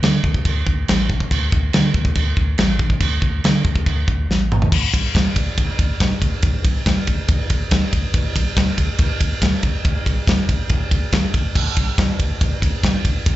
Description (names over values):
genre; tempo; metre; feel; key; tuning
heavy metal; 140 BPM; 4/4; straight; unclear; A4 = 440 Hz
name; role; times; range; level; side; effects
warm sub bass; bass; 0.0-13.4 s; A1 to D3; -21 LUFS; equal; none
modern studio drum kit; drums; 0.0-13.4 s; china cymbal, crash cymbal, kick drum, ride cymbal, snare drum, toms; -18 LUFS; equal; none
room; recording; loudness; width
little or no reverb; live gig heard through the venue's PA, club reverb, nothing above 7.9 kHz; -16 LUFS; side -15 dB against mid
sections
0.0-4.7 A section; 4.7-13.4 B section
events
drum fill 4.3-4.7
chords
none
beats
0.02 0.45 0.87 | 1.30 1.73 2.16 2.58 | 3.01 3.44 3.87 4.29 | 4.72 5.15 5.58 6.00 | 6.43 6.86 7.28 7.71 | 8.14 8.56 8.99 9.42 | 9.84 10.27 10.70 11.12 | 11.55 11.98 12.40 12.83 | 13.26